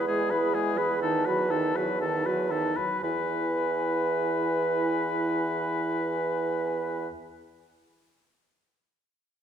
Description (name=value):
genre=quick classical-period movement for wind quintet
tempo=113-131 BPM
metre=4/4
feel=straight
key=E major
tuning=A4 = 440 Hz
part: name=mellow hollow concert flute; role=melody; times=0.0-7.1 s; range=G#5 to B5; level=-35 LUFS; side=left 9 dB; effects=none
part: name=clear oboe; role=second line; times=0.0-7.1 s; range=G#4 to B4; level=-31 LUFS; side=left 3 dB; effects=none
part: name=mellow clarinet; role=accompaniment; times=0.0-7.1 s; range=D#4 to G#4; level=-34 LUFS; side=right 4 dB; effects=none
part: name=warm French horn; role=accompaniment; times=0.0-7.1 s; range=D#3 to G#3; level=-33 LUFS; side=equal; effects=none
part: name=clear bassoon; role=bass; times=0.0-7.1 s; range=E2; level=-29 LUFS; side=right 3 dB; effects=none
room=wet recital hall reverb, RT60 1.6 s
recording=minimal, uncompressed stereo recording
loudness=-25 LUFS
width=side -8 dB against mid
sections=0.0-3.0 A section; 3.0-7.2 B section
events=slowing down 0.0-3.0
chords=0.0 E; 1.0 B7/E; 3.0 E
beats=0.08 0.54 | 1.02 1.50 1.99 2.50 | 3.03 3.55 4.07 4.59 | 5.11 5.63 6.14 6.66